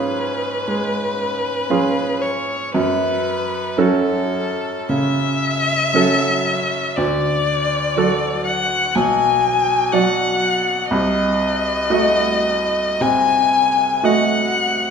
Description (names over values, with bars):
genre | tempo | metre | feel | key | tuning
classical, slow romantic movement for piano trio | 51-62 BPM | 4/4 | rubato | F# minor | A4 = 438 Hz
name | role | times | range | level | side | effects
warm violin | melody | 0.0-14.9 s | A4 to G#5 | -19 LUFS | left 4 dB | none
rich cello | second line | 0.0-14.8 s | E#3 to A3 | -26 LUFS | right 6 dB | none
bright baby grand piano | accompaniment | 0.0-14.9 s | B1 to Eb5 | -20 LUFS | right 2 dB | none
room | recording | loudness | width
wet recital hall reverb, RT60 1.5 s | recorded in a church or concert hall | -16 LUFS | side -6 dB against mid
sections
0.0-14.9 A section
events
none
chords
0.0 C#7/G#; 2.7 F#m; 7.0 D; 9.0 G#m7b5/B; 10.9 Cdim7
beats
0.67 1.70 | 2.73 3.77 4.89 5.94 | 6.97 7.96 8.95 9.92 | 10.90 11.90 13.01 14.03